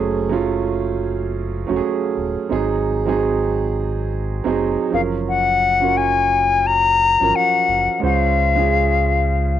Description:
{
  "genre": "lo-fi hip hop",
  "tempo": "87 BPM",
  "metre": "4/4",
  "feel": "swing 63% on 16ths",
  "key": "unclear",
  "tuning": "A4 = 436 Hz",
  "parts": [
    { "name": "warm upright piano", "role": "accompaniment", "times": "0.0-9.6 s", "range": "F3 to C5", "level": "-21 LUFS", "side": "right 7 dB", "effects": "cassette tape, low-pass filter" },
    { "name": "sub bass with octave", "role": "bass", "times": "0.0-9.6 s", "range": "Eb1 to Db2", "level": "-23 LUFS", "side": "equal", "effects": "transformer saturation" },
    { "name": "hollow concert flute", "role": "melody", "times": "4.9-9.6 s", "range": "F5 to Bb5", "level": "-16 LUFS", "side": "left 6 dB", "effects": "low-pass filter, cassette tape" }
  ],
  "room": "light reverb, small room ambience",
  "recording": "home recording on cassette",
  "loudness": "-16 LUFS",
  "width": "side -10 dB against mid",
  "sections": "0.0-9.6 A section",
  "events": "upright piano fill 9.4",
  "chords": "0.0 Gbmadd9; 2.5 Ab7; 4.9 Gbmaj7; 8.0 Dbmaj7",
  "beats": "0.43 1.12 1.81 | 2.50 3.19 3.88 4.57 | 5.26 5.95 6.64 7.33 | 8.02 8.71 9.40"
}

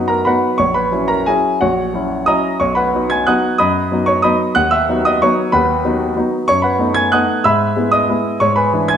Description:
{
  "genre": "classical, piano waltz",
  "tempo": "169-205 BPM",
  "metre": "3/4",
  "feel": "rubato",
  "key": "B major",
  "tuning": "A4 = 440 Hz",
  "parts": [
    { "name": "clear grand piano", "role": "solo", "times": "0.0-9.0 s", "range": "A#1 to G#6", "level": "-13 LUFS", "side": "equal", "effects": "none" }
  ],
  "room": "moderate recital hall reverb, RT60 1.6 s",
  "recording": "minimal, uncompressed stereo recording",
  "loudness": "-13 LUFS",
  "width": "side -8 dB against mid",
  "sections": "0.0-9.0 A section",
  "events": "none",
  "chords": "0.0 B; 0.6 F#7/A#; 2.6 B; 4.6 B/D#; 6.5 B7/F#; 7.4 E/G#; 8.4 E7/G#",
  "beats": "0.26 | 0.59 0.91 1.27 | 1.60 1.93 2.26 | 2.59 2.92 3.27 | 3.59 3.91 4.24 | 4.56 4.89 5.21 | 5.52 5.83 6.16 | 6.47 6.79 7.12 | 7.45 7.76 8.08 | 8.40 8.72"
}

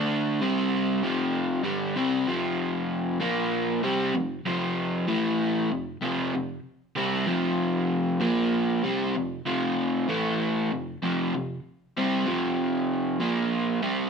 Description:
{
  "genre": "rock",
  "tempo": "96 BPM",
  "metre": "4/4",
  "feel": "straight",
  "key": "F major",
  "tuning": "A4 = 442 Hz",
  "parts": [
    { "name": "crunchy overdriven guitar", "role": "solo", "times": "0.0-14.1 s", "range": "F2 to D4", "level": "-24 LUFS", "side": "equal", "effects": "none" }
  ],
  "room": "moderate large studio reverb, RT60 0.9 s",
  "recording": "band playing live in one room",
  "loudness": "-24 LUFS",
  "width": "side -6 dB against mid",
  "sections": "0.0-2.3 A section; 2.3-14.1 B section",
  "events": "none",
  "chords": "0.4 C5; 1.0 F5; 3.2 Bb5; 3.8 F5; 5.1 A5; 5.7 F5; 8.2 Bb5; 8.8 F5; 10.1 A5; 10.7 F5; 13.2 Bb5",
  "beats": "0.41 1.03 1.65 | 2.27 2.90 3.52 4.14 | 4.77 5.39 6.02 6.64 | 7.27 7.89 8.52 9.14 | 9.77 10.40 11.02 11.65 | 12.27 12.90 13.52"
}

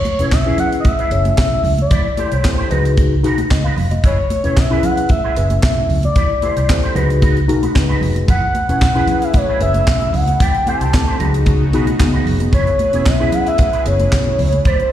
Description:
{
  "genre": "early-eighties boogie funk",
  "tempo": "113 BPM",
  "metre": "4/4",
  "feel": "straight",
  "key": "unclear",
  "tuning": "A4 = 440 Hz",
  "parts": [
    { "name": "expressive synth lead", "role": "melody", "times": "0.0-14.9 s", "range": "C5 to A5", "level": "-19 LUFS", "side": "equal", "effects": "chorus, slapback echo, plate reverb" },
    { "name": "tight funk drum kit", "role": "drums", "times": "0.0-14.9 s", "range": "handclaps, hi-hat, kick drum, snare drum", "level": "-17 LUFS", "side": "equal", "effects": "none" },
    { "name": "electric guitar with an envelope filter", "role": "riff", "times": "0.1-14.8 s", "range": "D#4 to D5", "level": "-27 LUFS", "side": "right 4 dB", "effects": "ensemble chorus, slapback echo" },
    { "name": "congas", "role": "percussion", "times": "0.1-14.8 s", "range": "none", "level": "-26 LUFS", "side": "right 2 dB", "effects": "slapback echo" },
    { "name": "mellow tine electric piano", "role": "accompaniment", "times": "0.2-14.5 s", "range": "B3 to E#5", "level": "-21 LUFS", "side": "left 4 dB", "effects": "phaser, plate reverb, slapback echo" },
    { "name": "vintage muted fingered electric bass", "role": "bass", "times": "0.2-14.8 s", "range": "E1 to D2", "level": "-17 LUFS", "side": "equal", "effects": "none" },
    { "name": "warm analog pad", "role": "sustained chords", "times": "8.3-14.9 s", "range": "C#3 to B4", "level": "-29 LUFS", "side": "right 1 dB", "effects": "chorus, tremolo, plate reverb" }
  ],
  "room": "light reverb",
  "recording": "live gig heard through the venue's PA, recital hall reverb",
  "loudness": "-13 LUFS",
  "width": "side -11 dB against mid",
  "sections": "0.0-14.9 A section",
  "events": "none",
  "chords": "0.0 F#9sus4 (rootless); 1.9 D9sus4; 2.7 C#9sus4; 4.0 F#9sus4; 6.2 D9sus4; 7.0 C#9sus4; 8.3 F#9sus4; 10.4 D9sus4; 11.2 C#9sus4; 12.5 F#9sus4",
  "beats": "0.32 0.85 1.38 | 1.91 2.44 2.97 3.50 | 4.04 4.57 5.10 5.63 | 6.16 6.69 7.22 7.75 | 8.28 8.81 9.34 9.88 | 10.41 10.94 11.47 12.00 | 12.53 13.06 13.59 14.12 | 14.65"
}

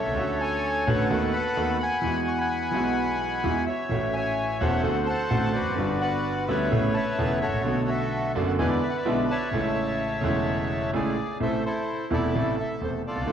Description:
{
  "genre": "tango",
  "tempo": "128 BPM",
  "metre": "4/4",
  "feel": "rubato",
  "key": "A major",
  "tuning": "A4 = 441 Hz",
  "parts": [
    { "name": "bandoneon", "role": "melody", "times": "0.0-13.3 s", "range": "E4 to C#6", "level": "-27 LUFS", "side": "left 2 dB", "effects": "none" },
    { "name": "clear concert grand piano", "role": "accompaniment", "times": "0.0-13.3 s", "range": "E1 to F#4", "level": "-26 LUFS", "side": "right 1 dB", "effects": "none" }
  ],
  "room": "moderate concert hall reverb, RT60 1.8 s",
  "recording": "dark, warm production",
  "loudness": "-23 LUFS",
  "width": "side -8 dB against mid",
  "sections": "0.0-11.4 A section; 11.4-13.3 B section",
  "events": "none",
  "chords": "0.2 Dmaj7; 1.1 B7/D#; 2.0 Eadd9; 3.9 A6; 4.9 D7; 5.8 Gmaj7; 6.7 Aadd9; 7.7 Bm7; 8.6 E7; 9.5 Amaj7; 11.4 Am",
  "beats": "| 0.18 0.64 1.11 1.57 | 2.04 2.51 2.97 3.44 | 3.91 4.38 4.85 5.32 | 5.79 6.25 6.72 7.19 | 7.66 8.12 8.59 9.06 | 9.53 10.00 10.47 10.94 | 11.41 11.88 12.35 12.82 | 13.28"
}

